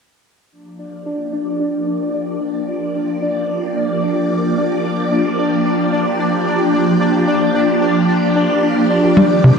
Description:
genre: ambient, sequencer-driven space music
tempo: free time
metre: none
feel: none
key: G minor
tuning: A4 = 441 Hz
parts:
  - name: phased string machine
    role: sustained chords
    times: 0.5-9.6 s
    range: Eb3 to D5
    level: -17 LUFS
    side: equal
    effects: ensemble chorus, phaser
  - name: pulsing gated texture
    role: texture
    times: 0.8-9.6 s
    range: D4 to D5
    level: -19 LUFS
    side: left 1 dB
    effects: chorus, built-in reverb
  - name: tight sequencer bass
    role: riff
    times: 9.2-9.5 s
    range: C3 to G3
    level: -10 LUFS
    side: equal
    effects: analog chorus
room: wet huge ambient reverb, RT60 7.5 s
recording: dark, warm production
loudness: -14 LUFS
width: side -6 dB against mid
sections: 0.5-9.6 A section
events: fade-in on string machine 0.5-9.6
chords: 0.5 Gm7

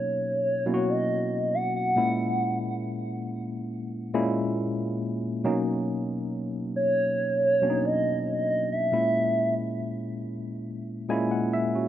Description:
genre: R&B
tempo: 69 BPM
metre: 4/4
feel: straight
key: unclear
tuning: A4 = 440 Hz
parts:
  - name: gliding portamento lead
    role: melody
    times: 0.0-9.5 s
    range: C#5 to F#5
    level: -25 LUFS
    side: right 1 dB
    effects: chorus, tape echo
  - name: tine electric piano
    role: accompaniment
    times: 0.0-11.9 s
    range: A#2 to G#5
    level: -27 LUFS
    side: left 1 dB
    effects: medium stereo tremolo
room: light reverb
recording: none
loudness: -24 LUFS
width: side -12 dB against mid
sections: 0.0-11.9 A section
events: tine electric piano fill 10.7-11.9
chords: 0.0 Bmaj7; 2.0 A#m7b5; 5.4 Bmaj7; 8.9 A#m7b5

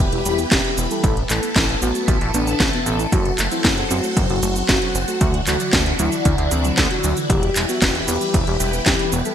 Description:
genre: italo disco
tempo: 115 BPM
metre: 4/4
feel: straight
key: E minor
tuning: A4 = 440 Hz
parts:
  - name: phased string machine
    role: sustained chords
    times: 0.0-9.3 s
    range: D3 to C5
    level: -24 LUFS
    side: left 1 dB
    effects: ensemble chorus, phaser
  - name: soft round pluck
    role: arpeggios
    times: 0.0-9.3 s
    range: D3 to A4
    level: -29 LUFS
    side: right 2 dB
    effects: chorus, ping-pong delay
  - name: chorused synth bass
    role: bass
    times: 0.0-9.2 s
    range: E1 to D2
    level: -24 LUFS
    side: equal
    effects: none
  - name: soft octave-layered synth lead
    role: melody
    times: 0.1-9.3 s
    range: B3 to A4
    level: -25 LUFS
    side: left 2 dB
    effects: chorus, tremolo, ping-pong delay
  - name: house drum kit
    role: drums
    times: 0.1-9.3 s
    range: cabasa, handclaps, hi-hat, snare drum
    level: -21 LUFS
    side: equal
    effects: overdrive, gated reverb
  - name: electronic kick drum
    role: drums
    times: 0.5-9.0 s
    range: none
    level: -21 LUFS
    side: equal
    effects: overdrive
room: light reverb, digital ambience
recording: bright 1980s-style digital production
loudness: -16 LUFS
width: side -9 dB against mid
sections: 0.0-9.3 A section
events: none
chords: 0.0 Em; 1.0 Asus2; 3.1 F#dim; 5.2 Dadd9; 7.3 Em

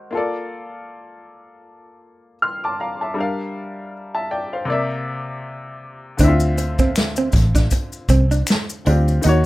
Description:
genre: R&B, neo-soul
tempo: 79 BPM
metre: 4/4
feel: swing 57% on 16ths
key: D minor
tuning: A4 = 442 Hz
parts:
  - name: bright upright piano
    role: accompaniment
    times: 0.0-9.5 s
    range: C3 to F6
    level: -23 LUFS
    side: left 2 dB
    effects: none
  - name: electric guitar through a small old amp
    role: second line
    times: 6.2-9.4 s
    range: C4 to Eb4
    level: -23 LUFS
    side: right 4 dB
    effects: spring reverb
  - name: vintage muted fingered electric bass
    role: bass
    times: 6.2-9.5 s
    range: A1 to Eb2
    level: -17 LUFS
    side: equal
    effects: none
  - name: unplugged drum kit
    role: drums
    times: 6.2-9.4 s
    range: hi-hat, kick drum, snare drum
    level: -19 LUFS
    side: equal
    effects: none
  - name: maracas and finger snaps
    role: percussion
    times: 6.2-9.4 s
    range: none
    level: -30 LUFS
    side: left 3 dB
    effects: none
room: little or no reverb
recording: rough home demo mix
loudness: -17 LUFS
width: side -18 dB against mid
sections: 0.0-6.2 A section; 6.2-9.5 B section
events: none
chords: 0.1 Bbmaj7; 3.2 Gm7; 4.7 C9; 6.2 Dm9

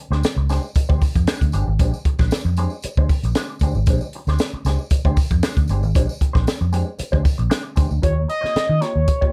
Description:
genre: funk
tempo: 116 BPM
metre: 4/4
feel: straight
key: Bb mixolydian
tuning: A4 = 440 Hz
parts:
  - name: mellow electric guitar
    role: accompaniment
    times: 0.0-9.3 s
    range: Ab3 to Db5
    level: -32 LUFS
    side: equal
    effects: wah
  - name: vintage muted fingered electric bass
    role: bass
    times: 0.1-9.1 s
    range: G1 to Eb3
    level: -22 LUFS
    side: equal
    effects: none
  - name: compact cocktail drum kit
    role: drums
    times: 0.1-9.3 s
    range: hi-hat, kick drum, snare drum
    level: -22 LUFS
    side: equal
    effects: none
  - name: tambourine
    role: percussion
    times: 0.2-8.0 s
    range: none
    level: -43 LUFS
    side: equal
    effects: none
  - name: expressive synth lead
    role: melody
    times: 8.0-9.3 s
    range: Db5 to Eb5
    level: -24 LUFS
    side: equal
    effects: chorus
room: little or no reverb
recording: dark, warm production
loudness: -20 LUFS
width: mono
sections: 0.0-8.0 A section; 8.0-9.3 B section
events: none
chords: 0.0 Bb13 (rootless); 8.0 Eb9

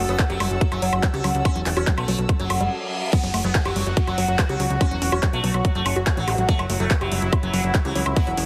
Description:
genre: psychedelic trance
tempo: 143 BPM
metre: 4/4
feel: straight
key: F# phrygian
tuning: A4 = 440 Hz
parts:
  - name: bubbling stepped-filter texture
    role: sustained chords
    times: 0.0-8.5 s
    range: F#3 to A4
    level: -33 LUFS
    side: equal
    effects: chorus, built-in reverb, sidechain pumping
  - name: woody wave-folded pluck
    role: riff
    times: 0.0-8.4 s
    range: E3 to G4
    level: -31 LUFS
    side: equal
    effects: chorus, sidechain pumping, tape echo
  - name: plucky analog bass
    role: bass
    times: 0.0-8.4 s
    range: E1 to C#2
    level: -28 LUFS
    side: equal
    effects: tube saturation
  - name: clear symphonic string section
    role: texture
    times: 0.0-2.7 s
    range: C#4 to E6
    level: -39 LUFS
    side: equal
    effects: sidechain pumping
  - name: sitar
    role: melody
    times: 0.1-8.3 s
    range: E3 to C#4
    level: -30 LUFS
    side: equal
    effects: phaser, sidechain pumping, delay
  - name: drum and bass drum kit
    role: drums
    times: 0.1-8.5 s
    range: crash cymbal, handclaps, hi-hat, woodblock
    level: -30 LUFS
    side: equal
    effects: overdrive
  - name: electronic kick drum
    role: drums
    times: 0.2-8.2 s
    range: none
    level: -23 LUFS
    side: equal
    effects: overdrive
  - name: reverse cymbal, downlifter and zap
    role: sound effects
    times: 2.5-6.5 s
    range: none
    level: -37 LUFS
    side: equal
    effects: none
room: light reverb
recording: heavily compressed radio sound, multiband compression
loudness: -22 LUFS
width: mono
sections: 0.0-3.1 A section; 3.1-8.5 B section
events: reverse cymbal 2.5-3.1; stop 2.7-3.1; drop 3.1-8.5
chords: 0.0 F#5

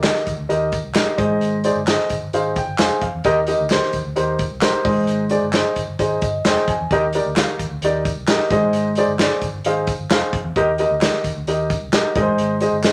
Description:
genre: uptempo 1960s-style soul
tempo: 131 BPM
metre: 4/4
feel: straight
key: Eb major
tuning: A4 = 440 Hz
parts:
  - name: dark upright piano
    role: accompaniment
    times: 0.0-12.9 s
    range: Ab2 to Ab5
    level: -21 LUFS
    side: equal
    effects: none
  - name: vintage muted fingered electric bass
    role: bass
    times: 0.0-12.9 s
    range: F1 to F2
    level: -30 LUFS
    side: equal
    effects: none
  - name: natural country drum kit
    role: drums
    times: 0.0-12.9 s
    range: hi-hat, kick drum, snare drum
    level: -24 LUFS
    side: equal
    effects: none
  - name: handclaps and tambourine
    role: percussion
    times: 0.0-12.9 s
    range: none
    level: -32 LUFS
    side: equal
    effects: none
room: wet studio reverb, RT60 0.6 s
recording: none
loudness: -19 LUFS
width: mono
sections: 0.0-12.9 A section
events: upright piano fill 2.3-3.2, 6.0-6.9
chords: 0.0 Eb; 1.2 Ab; 3.2 Eb; 4.8 Ab; 6.9 Eb; 8.5 Ab; 10.6 Eb; 12.2 Ab

